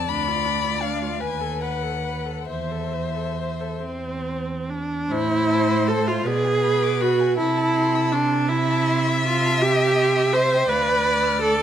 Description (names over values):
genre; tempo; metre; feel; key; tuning
classical, slow romantic movement for string quartet; 44-57 BPM (dotted quarters); 6/8; rubato; A minor; A4 = 438 Hz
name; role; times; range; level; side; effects
dark violin; melody; 0.0-11.6 s; C5 to F6; -30 LUFS; left 11 dB; none
warm violin; second line; 0.0-11.6 s; A4 to E5; -27 LUFS; left 4 dB; none
clear viola; accompaniment; 0.0-11.6 s; C4 to C5; -22 LUFS; right 1 dB; none
rich cello; bass; 0.1-11.6 s; D2 to C3; -26 LUFS; right 4 dB; none
room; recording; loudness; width
light reverb; close, detailed microphones; -19 LUFS; side -10 dB against mid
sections
0.0-5.1 A section; 5.1-11.6 B section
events
none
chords
0.1 Bdim/D; 1.2 B7/D#; 2.5 Am/E; 3.8 Cadd9/E; 5.1 Am; 6.3 G#dim/B; 7.4 Am/C; 9.6 C; 10.7 Bdim/D